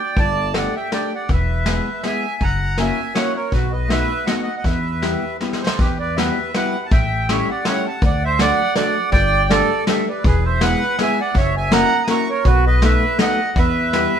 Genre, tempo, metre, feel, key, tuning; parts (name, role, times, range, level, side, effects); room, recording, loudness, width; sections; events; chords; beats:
musette waltz; 161 BPM; 3/4; swing 55% on 8ths; E minor; A4 = 440 Hz
accordion; melody; 0.0-14.2 s; F#4 to D#6; -20 LUFS; right 3 dB
upright bass; bass; 0.2-14.0 s; E1 to E2; -21 LUFS; equal
vintage brush drum kit; drums; 0.2-14.0 s; hi-hat, kick drum, snare drum; -20 LUFS; equal
archtop guitar, miked and amplified; accompaniment; 0.5-14.1 s; F#3 to B4; -23 LUFS; left 3 dB
moderate stone room reverb, RT60 1.1 s; band playing live in one room; -16 LUFS; side -8 dB against mid
0.0-5.8 A section; 5.8-14.2 A section
drum fill 5.4-5.8
0.2 Gsus2; 1.3 E; 2.4 F#7; 3.5 B7; 4.7 Em; 5.8 Emadd9; 6.9 A7; 8.0 D; 9.1 Gsus2; 10.2 E; 11.4 F#7; 12.5 B7; 13.6 Em
| 0.17 0.54 0.92 | 1.29 1.67 2.04 | 2.42 2.79 3.16 | 3.53 3.90 4.28 | 4.65 5.03 5.41 | 5.78 6.16 6.54 | 6.91 7.28 7.65 | 8.02 8.39 8.76 | 9.12 9.49 9.87 | 10.24 10.62 10.99 | 11.36 11.72 12.09 | 12.46 12.82 13.19 | 13.56 13.94